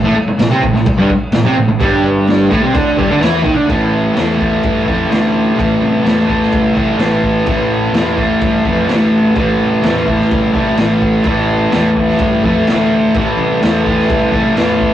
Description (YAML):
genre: garage rock duo or trio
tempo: 127 BPM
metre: 4/4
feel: straight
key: A minor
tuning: A4 = 440 Hz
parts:
  - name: fuzz guitar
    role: riff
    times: 0.0-14.9 s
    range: G2 to E4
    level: -12 LUFS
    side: equal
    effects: distortion
  - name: fuzz fingered electric bass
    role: bass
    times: 0.0-14.9 s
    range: G1 to G2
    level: -21 LUFS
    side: equal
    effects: overdrive
  - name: raw garage drum kit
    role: drums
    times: 0.4-14.9 s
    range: crash cymbal, kick drum, snare drum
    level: -19 LUFS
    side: equal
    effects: none
room: wet studio reverb, RT60 0.5 s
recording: rough rehearsal-room recording, warm saturation, cassette tape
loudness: -11 LUFS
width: side -11 dB against mid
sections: 0.0-3.7 A section; 3.7-14.9 B section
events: none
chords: 0.0 Am